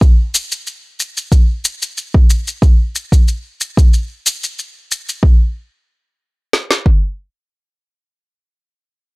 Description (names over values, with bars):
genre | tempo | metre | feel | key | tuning
organic downtempo | 92 BPM | 4/4 | swing 54% on 16ths | none | none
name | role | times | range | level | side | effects
afro-pop drum kit | drums | 0.0-7.0 s | kick drum, snare drum | -10 LUFS | equal | none
shaker | drums | 0.0-5.2 s | none | -19 LUFS | left 1 dB | none
room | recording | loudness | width
little or no reverb | dry, gritty hardware recording, transformer saturation | -13 LUFS | side -27 dB against mid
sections
0.0-5.2 A section; 5.2-7.8 B section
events
none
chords
none